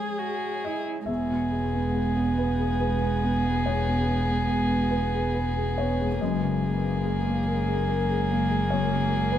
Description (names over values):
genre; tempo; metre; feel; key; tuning
neoclassical piano and strings; 47 BPM (dotted quarters); 6/8; rubato; unclear; A4 = 440 Hz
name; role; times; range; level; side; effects
dark violin; melody; 0.0-9.4 s; G#4; -30 LUFS; left 2 dB; none
warm cello; second line; 0.0-9.4 s; G#3 to G#4; -35 LUFS; right 6 dB; none
felt-muted upright piano; accompaniment; 0.0-9.4 s; E2 to E5; -30 LUFS; left 1 dB; none
glassy FM pad; sustained chords; 0.0-9.4 s; G#3 to C#5; -36 LUFS; left 4 dB; ensemble chorus, built-in reverb
warm viola; accompaniment; 1.1-9.4 s; A#3 to B3; -32 LUFS; right 2 dB; none
warm double bass; bass; 1.1-9.4 s; E1 to F#1; -27 LUFS; equal; none
room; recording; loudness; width
little or no reverb; close, detailed microphones; -23 LUFS; side -11 dB against mid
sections
0.0-1.1 A section; 1.1-9.4 A section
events
none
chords
0.0 C#m; 1.1 E; 6.2 F#add9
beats
| 1.08 2.37 | 3.66 4.92 | 6.20 7.46 | 8.70